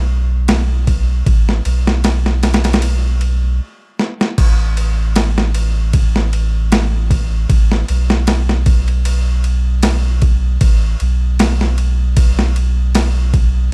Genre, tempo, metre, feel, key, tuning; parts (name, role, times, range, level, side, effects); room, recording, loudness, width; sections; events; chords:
trip hop; 77 BPM; 4/4; swing 55% on 16ths; A4 = 439 Hz
soft dub sub bass; bass; 0.0-13.7 s; A1 to B1; -17 LUFS; equal
boom bap sampler-style drum kit; drums; 0.5-13.5 s; crash cymbal, kick drum, ride cymbal, snare drum; -18 LUFS; equal; overdrive
little or no reverb; dark, warm production; -15 LUFS; mono
0.0-4.4 A section; 4.4-13.7 B section
stop 3.6-4.4; drum fill 4.0-4.4